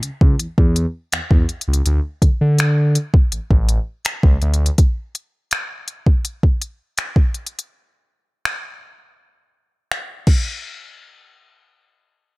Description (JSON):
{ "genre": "contemporary R&B", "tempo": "82 BPM", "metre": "4/4", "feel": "straight", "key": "unclear", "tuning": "A4 = 441 Hz", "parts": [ { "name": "smooth synth bass", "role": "bass", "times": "0.0-4.7 s", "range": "A1 to D3", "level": "-17 LUFS", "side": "equal", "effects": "none" }, { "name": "smooth R&B drum kit", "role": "drums", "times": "0.0-10.4 s", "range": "crash cymbal, finger snaps, hi-hat, kick drum", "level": "-16 LUFS", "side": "equal", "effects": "none" } ], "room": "little or no reverb", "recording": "none", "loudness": "-16 LUFS", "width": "side -24 dB against mid", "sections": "0.0-10.6 A section; 10.6-12.4 B section", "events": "kick muted 9.2-10.6", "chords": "none" }